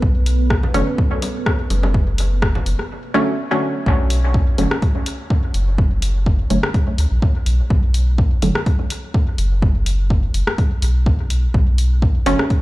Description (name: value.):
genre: dub techno.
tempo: 125 BPM.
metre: 4/4.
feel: swing 54% on 16ths.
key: B minor.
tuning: A4 = 440 Hz.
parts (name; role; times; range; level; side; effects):
deep dark ambient pad; sustained chords; 0.0-2.9 s; B3 to B4; -29 LUFS; right 3 dB; chorus, built-in reverb, sidechain pumping.
round analog bass; bass; 0.0-12.3 s; F#1 to D2; -18 LUFS; equal; tube saturation, sidechain pumping.
electronic kick drum; drums; 0.0-12.6 s; none; -17 LUFS; equal; overdrive.
punchy analog drum machine; drums; 0.3-12.6 s; hi-hat, rim click; -26 LUFS; left 1 dB; overdrive, dub echo.
congas and bongos; percussion; 0.6-2.6 s; none; -29 LUFS; right 1 dB; sidechain pumping on perc, dub echo.
filtered dub chord stab; stabs; 0.7-8.5, 12.3 s; D3 to C#4; -22 LUFS; equal; chorus, phaser, sidechain pumping, dub echo.
room: little or no reverb.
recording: played on a big sound system in a bare room, large studio reverb.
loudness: -15 LUFS.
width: side -18 dB against mid.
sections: 0.0-3.9 A section; 3.9-12.6 A section.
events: none.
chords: 0.0 Bm7; 3.9 B5.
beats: | 0.02 0.50 0.98 1.46 | 1.94 2.42 2.90 3.38 | 3.86 4.34 4.82 5.30 | 5.78 6.26 6.74 7.22 | 7.70 8.18 8.66 9.14 | 9.62 10.10 10.58 11.06 | 11.54 12.02 12.50.